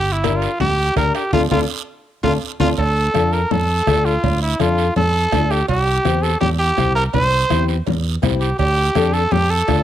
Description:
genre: latin, cumbia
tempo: 165 BPM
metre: 4/4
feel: straight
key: D minor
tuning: A4 = 437 Hz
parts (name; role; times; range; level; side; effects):
- growling trumpet; melody; 0.0-9.8 s; E4 to C5; -19 LUFS; right 1 dB; none
- fingered electric bass; bass; 0.0-9.8 s; G1 to F2; -20 LUFS; right 1 dB; none
- nylon-string guitar; accompaniment; 0.2-9.8 s; C4 to Bb4; -22 LUFS; left 8 dB; none
- bombo; percussion; 0.2-9.8 s; none; -26 LUFS; right 5 dB; none
- congas; percussion; 0.2-9.8 s; none; -24 LUFS; left 7 dB; none
- guiro; percussion; 0.2-9.8 s; none; -31 LUFS; right 13 dB; none
- timbales and cowbell; percussion; 0.2-9.5 s; none; -29 LUFS; right 14 dB; none
room: light reverb, studio ambience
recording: home recording on cassette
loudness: -15 LUFS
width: side -11 dB against mid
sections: 0.0-2.8 A section; 2.8-9.8 B section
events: band accent 1.3-2.8; drum fill 2.2-2.8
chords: 0.0 Gm; 1.3 Dm; 5.7 C; 8.6 Dm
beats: 0.24 0.60 0.97 | 1.33 1.69 2.06 2.42 | 2.78 3.14 3.51 3.87 | 4.23 4.60 4.96 5.32 | 5.69 6.05 6.41 6.78 | 7.14 7.50 7.87 8.23 | 8.59 8.96 9.32 9.68

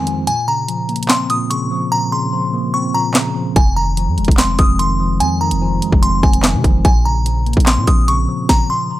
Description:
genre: hip hop, drill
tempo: 146 BPM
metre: 4/4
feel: half-time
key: unclear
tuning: A4 = 440 Hz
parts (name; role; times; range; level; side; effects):
- delicate synth tine bell; melody; 0.0-9.0 s; Ab5 to Eb6; -19 LUFS; equal; chorus, analog delay
- mellow tine electric piano; accompaniment; 0.0-9.0 s; F2 to C4; -20 LUFS; equal; medium stereo tremolo
- drill drum kit; drums; 0.1-8.6 s; handclaps, hi-hat, kick drum, snare drum; -14 LUFS; equal; none
- long sustained 808-style bass; bass; 3.6-8.3 s; F1 to C3; -18 LUFS; equal; none
room: digital ambience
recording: dry, gritty hardware recording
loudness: -13 LUFS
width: side -15 dB against mid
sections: 0.0-9.0 A section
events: break 0.0-3.6; hi-hats muted 1.9-3.6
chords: 0.3 Bbmadd9; 3.6 Fm7; 6.8 Bbmadd9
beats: | 0.27 0.68 1.09 1.51 | 1.92 2.33 2.74 3.15 | 3.56 3.97 4.38 4.79 | 5.21 5.62 6.03 6.44 | 6.85 7.26 7.67 8.08 | 8.49 8.90

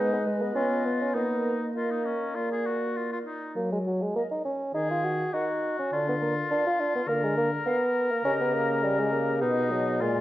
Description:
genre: quick classical-period movement for wind quintet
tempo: 102 BPM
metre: 4/4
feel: rubato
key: Eb minor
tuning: A4 = 440 Hz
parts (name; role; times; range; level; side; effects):
- silver concert flute; melody; 0.0-10.2 s; D5 to Gb5; -36 LUFS; left 8 dB; none
- warm oboe; second line; 0.0-10.2 s; Db4 to Bb4; -32 LUFS; left 3 dB; none
- mellow French horn; accompaniment; 0.0-10.2 s; Bb2 to Cb4; -31 LUFS; equal; none
- mellow clarinet; accompaniment; 0.0-10.2 s; G4 to Cb5; -36 LUFS; right 4 dB; none
- mellow bassoon; bass; 0.0-10.2 s; Gb3 to Gb4; -28 LUFS; right 1 dB; none
room: moderate recital hall reverb, RT60 1.6 s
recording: worn, warbling old tape, cassette tape, warbly pitch drift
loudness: -25 LUFS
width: side -15 dB against mid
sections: 0.0-10.2 A section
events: none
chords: 0.0 Abm; 1.1 Bbsus4; 2.4 Bb; 3.6 Ebm/Gb (rootless); 4.7 Ebm; 5.9 Bb/D; 8.2 Eb7/Db; 9.4 Abm/Cb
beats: 0.55 | 1.15 1.75 2.36 2.96 | 3.56 4.16 4.75 5.33 | 5.92 6.50 7.08 7.66 | 8.24 8.83 9.42 10.01

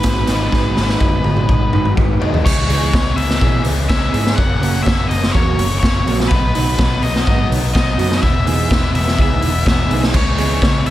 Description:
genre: indie rock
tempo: 125 BPM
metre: 4/4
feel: straight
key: C# dorian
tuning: A4 = 441 Hz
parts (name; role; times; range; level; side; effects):
- octave-fuzz lead guitar; melody; 0.0-10.9 s; B4 to F#5; -23 LUFS; left 2 dB; distortion
- mellow tonewheel organ; sustained chords; 0.0-10.9 s; A#4 to D#6; -34 LUFS; equal; none
- mellow electric guitar; riff; 0.0-10.7 s; E3 to B4; -24 LUFS; right 8 dB; analog chorus, digital delay
- raw garage guitar; riff; 0.0-10.9 s; F#2 to E4; -24 LUFS; left 7 dB; overdrive
- picked electric bass; bass; 0.0-10.9 s; E1 to B2; -19 LUFS; equal; none
- raw garage drum kit; drums; 0.0-10.9 s; crash cymbal, hi-hat, kick drum, snare drum, toms; -16 LUFS; equal; none
room: little or no reverb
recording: none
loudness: -13 LUFS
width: side -14 dB against mid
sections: 0.0-2.4 A section; 2.4-10.9 B section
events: drum fill 0.5-2.4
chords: 0.0 G#m7; 2.4 C#m7; 4.4 F#; 6.3 B; 8.2 Emaj7; 10.1 C#m7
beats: 0.04 | 0.52 1.00 1.48 1.97 | 2.45 2.93 3.41 3.89 | 4.37 4.85 5.33 5.82 | 6.30 6.78 7.26 7.74 | 8.22 8.70 9.18 9.65 | 10.13 10.62

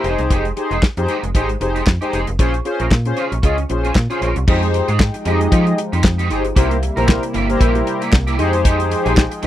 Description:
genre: early-eighties boogie funk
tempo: 115 BPM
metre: 4/4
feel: swing 56% on 16ths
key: F minor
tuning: A4 = 440 Hz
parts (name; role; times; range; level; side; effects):
- mellow synth brass; accompaniment; 0.0-9.5 s; Db4 to Eb5; -20 LUFS; left 2 dB; chorus
- electric guitar at the edge of break-up; riff; 0.0-9.5 s; Ab3 to Bb4; -24 LUFS; right 4 dB; ensemble chorus
- slap-like FM bass; bass; 0.0-9.5 s; F1 to F3; -20 LUFS; equal; none
- damped 70s drum kit; drums; 0.0-9.5 s; crash cymbal, handclaps, hi-hat, kick drum, snare drum; -16 LUFS; equal; none
- chorused pulse-width pad; sustained chords; 4.5-9.5 s; C3 to G5; -25 LUFS; equal; none
room: little or no reverb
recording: dry, close 1970s-style studio recording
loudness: -14 LUFS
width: side -12 dB against mid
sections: 0.0-4.5 A section; 4.5-9.5 B section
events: none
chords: 0.0 Fm9; 2.4 Bbm7; 4.5 Fm9; 6.6 C7; 8.4 Fm9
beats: | 0.30 0.82 1.35 1.87 | 2.39 2.91 3.43 3.96 | 4.48 5.00 5.52 6.04 | 6.56 7.09 7.61 8.13 | 8.65 9.17

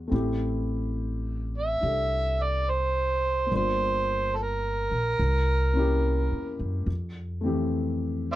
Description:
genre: jazz ballad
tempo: 71 BPM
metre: 4/4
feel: swing 66% on 8ths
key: unclear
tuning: A4 = 440 Hz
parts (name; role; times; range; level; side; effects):
- warm grand piano; accompaniment; 0.0-8.4 s; E3 to Bb4; -31 LUFS; left 2 dB; none
- upright bass; bass; 0.0-8.4 s; G1 to Gb2; -28 LUFS; equal; none
- overdriven harmonica; melody; 1.6-8.4 s; A4 to F5; -26 LUFS; right 2 dB; none
room: little or no reverb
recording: dark, warm production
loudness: -24 LUFS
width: side -14 dB against mid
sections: 0.0-8.4 A section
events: none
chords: 0.1 Am7; 3.5 Gm7; 5.2 C7b9; 6.9 Fmaj9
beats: | 0.11 0.96 1.81 2.66 | 3.50 4.35 5.19 6.03 | 6.87 7.71

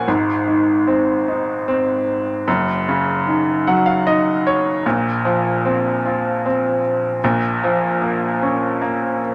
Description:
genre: folk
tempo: 75 BPM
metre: 3/4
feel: straight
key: unclear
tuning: A4 = 441 Hz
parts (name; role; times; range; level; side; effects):
- bright baby grand piano; solo; 0.0-9.3 s; Gb1 to Gb5; -18 LUFS; equal; none
room: moderate small room reverb, RT60 0.5 s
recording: none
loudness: -19 LUFS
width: mono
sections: 0.0-9.3 A section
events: none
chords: 0.1 Ab; 2.5 Ebm7/Gb; 4.8 Bbsus2; 7.2 Bbm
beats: | 0.06 0.86 1.67 | 2.47 3.27 4.06 | 4.85 5.64 6.43 | 7.22 8.01 8.81

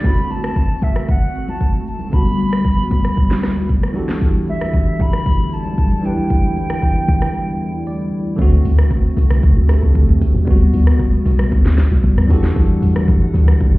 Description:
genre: amapiano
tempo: 115 BPM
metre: 4/4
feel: straight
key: E minor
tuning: A4 = 439 Hz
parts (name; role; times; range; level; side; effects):
- silver concert flute; melody; 0.0-8.1 s; E5 to B5; -25 LUFS; right 1 dB; ping-pong delay
- bell-like tine electric piano; accompaniment; 0.0-13.8 s; D3 to D5; -22 LUFS; right 1 dB; none
- hollow soft pad; sustained chords; 0.0-13.8 s; D2 to F#5; -24 LUFS; left 2 dB; ensemble chorus, sidechain pumping
- afro-pop drum kit; drums; 0.0-13.8 s; hi-hat, kick drum, rim click, shaker, snare drum, toms; -16 LUFS; equal; none
- congas; percussion; 0.0-13.5 s; none; -26 LUFS; left 1 dB; none
- deep log drum bass; bass; 8.4-13.8 s; B1 to E2; -13 LUFS; equal; none
room: digital ambience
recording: heard muffled through a wall, stone room reverb, EQ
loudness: -13 LUFS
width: side -20 dB against mid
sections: 0.0-8.4 A section; 8.4-13.8 B section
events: break 7.3-8.4; tine electric piano fill 7.6-8.4; drop 8.4-13.8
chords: 0.0 D7; 2.1 Gmaj9/D; 4.0 Em11; 8.4 D7; 10.5 Gmaj9; 12.3 Em11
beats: | 0.04 0.56 1.08 1.61 | 2.13 2.65 3.17 3.69 | 4.21 4.74 5.26 5.78 | 6.30 6.82 7.34 7.87 | 8.39 8.91 9.43 9.95 | 10.47 11.00 11.52 12.04 | 12.56 13.08 13.61

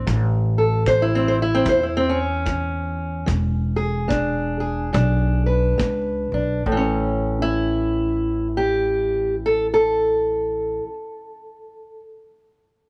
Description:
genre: acoustic country blues, solo or duo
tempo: 68-76 BPM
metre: 4/4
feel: swing 62% on 8ths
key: A major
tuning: A4 = 440 Hz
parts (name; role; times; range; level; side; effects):
- fingerpicked steel-string acoustic guitar; melody; 0.0-12.0 s; A2 to C5; -23 LUFS; equal; none
- upright bass; bass; 0.0-10.8 s; E1 to E2; -26 LUFS; equal; none
- kick drum; drums; 0.1-6.0 s; none; -30 LUFS; equal; none
room: small room ambience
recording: none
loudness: -21 LUFS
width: mono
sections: 0.0-6.7 A section; 6.7-10.2 B section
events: slowing down 0.1-6.7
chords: 0.1 A; 3.3 E7; 6.7 A7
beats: | 0.07 0.86 1.66 2.46 | 3.27 4.09 4.93 5.78 | 6.65 7.53 8.41 9.29

